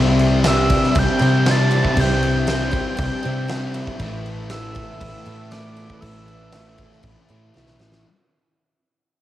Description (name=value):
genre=rock, shoegaze and dream pop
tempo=118 BPM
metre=4/4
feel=straight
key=A minor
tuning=A4 = 440 Hz
part: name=string machine, full ensemble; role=sustained chords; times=0.0-8.0 s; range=G4 to C6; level=-32 LUFS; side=right 1 dB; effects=ensemble chorus, cassette tape
part: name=picked twelve-string acoustic guitar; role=arpeggios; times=0.0-8.1 s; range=E3 to G4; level=-31 LUFS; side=right 6 dB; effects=wide subtle chorus, cassette tape, tape echo
part: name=crunchy overdriven guitar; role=riff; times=0.0-8.1 s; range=A2 to C4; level=-28 LUFS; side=equal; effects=cassette tape
part: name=thick fuzz guitar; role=riff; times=0.0-8.1 s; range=A2 to C4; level=-24 LUFS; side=left 6 dB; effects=distortion, wide subtle chorus, cassette tape
part: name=twangy electric guitar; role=riff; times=0.0-8.1 s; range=A2 to A4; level=-31 LUFS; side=right 7 dB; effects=reverse reverb, cassette tape
part: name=hollow-body short-scale picked electric bass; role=bass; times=0.0-8.0 s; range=A1 to C3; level=-21 LUFS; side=equal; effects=none
part: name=huge arena drum kit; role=drums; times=0.2-8.0 s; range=crash cymbal, kick drum, snare drum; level=-24 LUFS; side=equal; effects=cassette tape
part: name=soft octave-layered synth lead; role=melody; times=0.5-7.0 s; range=D6 to A6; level=-26 LUFS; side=right 1 dB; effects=chorus, cassette tape
room=little or no reverb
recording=home recording on cassette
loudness=-16 LUFS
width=side -13 dB against mid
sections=0.0-8.1 A section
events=fade-out 0.0-8.1; drum fill 7.5-8.1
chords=0.0 Cadd9; 4.0 Asus2